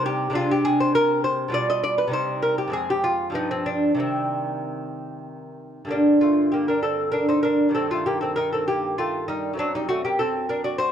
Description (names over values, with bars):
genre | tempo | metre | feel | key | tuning
classical, baroque-style dance for lute | 98 BPM | 3/4 | rubato | C minor, G minor from 5.9 s | A4 = 441 Hz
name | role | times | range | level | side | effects
lute | solo | 0.0-10.9 s | F2 to Eb5 | -21 LUFS | equal | none
room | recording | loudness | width
light reverb | dark, warm production | -20 LUFS | side -9 dB against mid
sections
0.0-5.9 A section; 5.9-10.9 A section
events
none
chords
0.3 Bb9/C; 1.5 G7/B; 2.1 Cm; 2.7 Fm; 3.4 G7; 4.0 Cm; 5.9 Gm; 7.7 Cm/G; 9.6 D7/F#